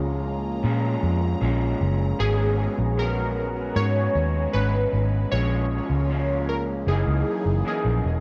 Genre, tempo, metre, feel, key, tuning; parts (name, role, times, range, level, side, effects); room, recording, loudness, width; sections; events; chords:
indie pop, bedroom pop; 77 BPM; 4/4; straight; A4 = 440 Hz
electric guitar through a small old amp; accompaniment; 0.0-8.2 s; F#2 to D#4; -31 LUFS; equal; subtle chorus, warbly pitch drift
phased analog pad; sustained chords; 0.0-8.2 s; E3 to A#5; -37 LUFS; equal; phaser, chorus
vintage muted fingered electric bass; bass; 0.0-8.2 s; E1 to A#2; -26 LUFS; equal
warm analog keys; melody; 2.2-8.2 s; G#4 to C#5; -30 LUFS; equal; phaser, subtle chorus, tape echo
light reverb; cassette tape; -24 LUFS; mono
0.0-8.2 A section
0.0 A#m7; 2.2 G#m11; 5.3 A#m7; 6.9 F#13